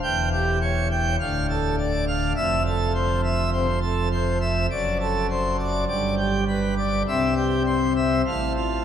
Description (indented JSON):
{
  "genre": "classical, organ toccata",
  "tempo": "102 BPM",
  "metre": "4/4",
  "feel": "straight",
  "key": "unclear",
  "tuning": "A4 = 440 Hz",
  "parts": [
    { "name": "pipe organ, plenum", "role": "solo", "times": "0.0-8.8 s", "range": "D1 to G5", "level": "-21 LUFS", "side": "equal", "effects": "none" }
  ],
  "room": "wet cathedral reverb, RT60 6.5 s",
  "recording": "none",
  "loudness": "-21 LUFS",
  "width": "side -9 dB against mid",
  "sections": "0.0-8.8 A section",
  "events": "none",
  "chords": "0.0 C#dim/E; 1.2 Dm; 2.4 Fmaj7; 4.7 D7/F#; 5.9 G; 7.1 C; 8.3 F/A"
}